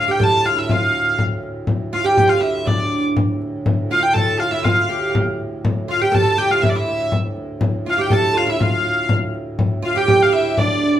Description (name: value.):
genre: medieval dance.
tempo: 122 BPM.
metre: 2/4.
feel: straight.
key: D minor.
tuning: A4 = 440 Hz.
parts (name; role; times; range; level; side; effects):
clear hurdy-gurdy; melody; 0.0-10.9 s; D5 to A5; -18 LUFS; equal; none.
oud; second line; 0.0-10.9 s; D4 to A4; -21 LUFS; right 4 dB; none.
pedal harmonium; drone; 0.0-11.0 s; D2 to A2; -28 LUFS; right 1 dB; none.
frame drum; percussion; 0.2-10.8 s; none; -20 LUFS; left 2 dB; none.
warm viola da gamba; second line; 3.9-11.0 s; D4 to A4; -26 LUFS; left 3 dB; none.
room: wet large studio reverb, RT60 0.8 s.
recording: band playing live in one room.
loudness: -16 LUFS.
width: side -11 dB against mid.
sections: 0.0-3.2 A section; 3.2-11.0 A section.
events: none.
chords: none.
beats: | 0.20 0.70 | 1.20 1.69 | 2.19 2.68 | 3.17 3.67 | 4.16 4.66 | 5.15 5.64 | 6.14 6.63 | 7.12 7.62 | 8.11 8.60 | 9.10 9.59 | 10.08 10.57.